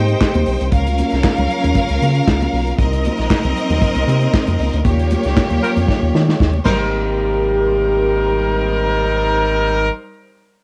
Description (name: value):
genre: disco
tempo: 116 BPM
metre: 4/4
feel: straight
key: Ab major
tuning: A4 = 444 Hz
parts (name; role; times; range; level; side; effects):
- clear studio string section; second line; 0.0-9.9 s; G3 to G5; -24 LUFS; equal; cassette tape
- mellow French horn section; sustained chords; 0.0-9.9 s; Bb2 to G4; -25 LUFS; equal; cassette tape
- round analog bass; bass; 0.0-9.9 s; Ab1 to Eb3; -21 LUFS; equal; none
- vintage drum kit; drums; 0.1-6.8 s; crash cymbal, handclaps, hi-hat, kick drum, snare drum; -21 LUFS; equal; cassette tape
- congas; percussion; 0.4-7.1 s; none; -28 LUFS; equal; none
- clear horn section; stabs; 5.6-9.9 s; G3 to Bb4; -21 LUFS; equal; cassette tape
room: light reverb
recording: home recording on cassette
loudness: -16 LUFS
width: mono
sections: 0.0-6.9 A section; 6.9-10.6 B section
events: band accent 4.8-6.9; drum fill 5.9-6.9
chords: 0.0 Abmaj9; 0.7 Db6; 2.8 Cm7; 4.8 Eb9; 6.7 Abmaj9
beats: 0.20 | 0.72 1.24 1.75 2.27 | 2.79 3.30 3.82 4.33 | 4.85 5.37 5.88 6.40 | 6.91 7.43 7.95 8.46 | 8.98 9.49